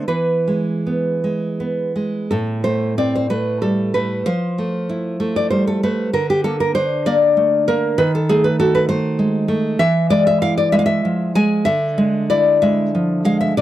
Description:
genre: romantic piece for solo classical guitar.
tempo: 50-68 BPM (dotted quarters).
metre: 6/8.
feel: rubato.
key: unclear.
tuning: A4 = 442 Hz.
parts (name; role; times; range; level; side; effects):
nylon-string guitar; solo; 0.0-13.6 s; A2 to G#5; -16 LUFS; equal; none.
room: light reverb.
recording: dry, close 1970s-style studio recording.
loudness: -15 LUFS.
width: side -13 dB against mid.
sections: 0.0-2.3 A section; 2.3-13.6 B section.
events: none.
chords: 0.1 E; 2.3 Am; 4.3 Fmaj7; 6.2 Bb/D; 8.0 D#dim7; 9.8 E; 11.7 E7/D.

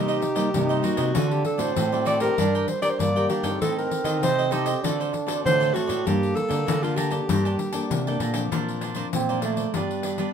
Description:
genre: samba and choro.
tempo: 98 BPM.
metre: 4/4.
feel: straight.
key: G minor.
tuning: A4 = 439 Hz.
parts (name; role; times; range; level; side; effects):
breathy alto saxophone; melody; 0.0-8.2 s; F4 to D5; -26 LUFS; right 1 dB; none.
breathy trombone; second line; 0.0-10.3 s; G3 to Eb4; -29 LUFS; right 6 dB; none.
cavaquinho; accompaniment; 0.0-10.3 s; D4 to A5; -32 LUFS; right 4 dB; none.
nylon-string guitar; accompaniment; 0.0-10.3 s; G2 to Bb4; -30 LUFS; left 3 dB; none.
nylon-string guitar; bass; 0.0-10.3 s; G2 to Eb3; -28 LUFS; equal; none.
pandeiro; percussion; 0.1-10.3 s; none; -30 LUFS; left 6 dB; none.
room: moderate studio reverb, RT60 0.5 s.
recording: minimal, uncompressed stereo recording.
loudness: -21 LUFS.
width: side -7 dB against mid.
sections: 0.0-8.5 A section; 8.5-10.3 B section.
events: trombone solo 8.5-10.3.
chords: 0.0 Cm7; 1.2 D7; 2.4 Gm; 3.6 Adim; 4.8 D7; 6.1 Gmadd9; 8.5 Bbadd9; 9.7 G.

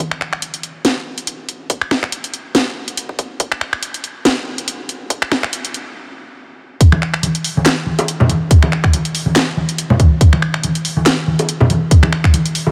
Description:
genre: dubstep.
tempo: 141 BPM.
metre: 4/4.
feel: swing 55% on 16ths, half-time.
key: none.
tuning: none.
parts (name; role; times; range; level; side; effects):
electronic kick drum; drums; 0.0-12.3 s; none; -12 LUFS; equal; high-pass filter on kick, studio reverb.
garage drum kit; drums; 0.0-12.6 s; finger snaps, handclaps, hi-hat, snare drum; -20 LUFS; equal; studio reverb.
congas and bongos; percussion; 6.9-12.7 s; none; -19 LUFS; equal; none.
room: light reverb.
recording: none.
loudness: -16 LUFS.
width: mono.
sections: 0.0-6.8 A section; 6.8-12.7 B section.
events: build-up 0.0-6.8; stop 6.0-6.8; drop 6.8-12.7.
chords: none.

